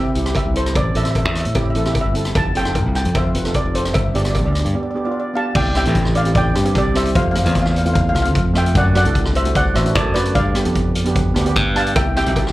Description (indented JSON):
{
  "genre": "calypso",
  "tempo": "150 BPM",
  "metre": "4/4",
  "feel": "straight",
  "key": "C major",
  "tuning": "A4 = 440 Hz",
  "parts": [
    { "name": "steel pan", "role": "melody", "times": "0.0-12.5 s", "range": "G4 to A5", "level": "-22 LUFS", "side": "equal", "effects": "slapback echo" },
    { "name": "steel pan", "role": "accompaniment", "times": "0.0-12.5 s", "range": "A3 to C5", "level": "-24 LUFS", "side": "right 2 dB", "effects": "none" },
    { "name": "modern bright fingered electric bass", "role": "bass", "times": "0.0-12.5 s", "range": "F1 to C3", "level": "-19 LUFS", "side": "equal", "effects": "none" },
    { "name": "street-band drum kit", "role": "drums", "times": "0.2-12.5 s", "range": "crash cymbal, hi-hat, kick drum, rim click", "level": "-21 LUFS", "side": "equal", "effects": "none" },
    { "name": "cowbell", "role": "percussion", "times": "0.3-4.4, 12.0-12.5 s", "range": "none", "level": "-27 LUFS", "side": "equal", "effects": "slapback echo" }
  ],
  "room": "light reverb",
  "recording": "live gig heard through the venue's PA, club reverb",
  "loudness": "-15 LUFS",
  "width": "side -17 dB against mid",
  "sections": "0.0-5.6 A section; 5.6-12.5 B section",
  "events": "break 4.8-5.6",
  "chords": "0.0 C; 0.8 Am7; 2.4 F; 4.0 G; 5.6 Csus2; 7.2 Fmaj7; 8.8 D7; 10.4 G7; 12.0 Cmaj7",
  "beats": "0.35 | 0.75 1.15 1.55 1.95 | 2.35 2.75 3.15 3.55 | 3.96 4.36 4.75 5.16 | 5.55 5.96 6.36 6.75 | 7.16 7.55 7.96 8.35 | 8.76 9.15 9.55 9.96 | 10.36 10.76 11.16 11.56 | 11.96 12.36"
}